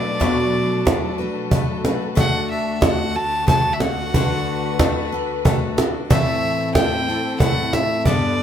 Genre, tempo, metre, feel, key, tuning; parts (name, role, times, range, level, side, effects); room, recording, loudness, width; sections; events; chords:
acoustic folk duo or small band; 92 BPM; 3/4; straight; A4 = 441 Hz
clear fiddle; melody; 0.0-8.4 s; D5 to A5; -23 LUFS; equal
picked steel-string acoustic guitar; accompaniment; 0.0-8.4 s; G2 to B4; -23 LUFS; left 2 dB
warm studio string section; sustained chords; 0.0-8.4 s; D2 to B4; -28 LUFS; left 2 dB
cajon; percussion; 0.2-8.4 s; -19 LUFS; right 1 dB
light reverb; -17 LUFS; side -9 dB against mid
0.0-8.4 A section
0.0 Bm7; 2.2 D; 6.1 Am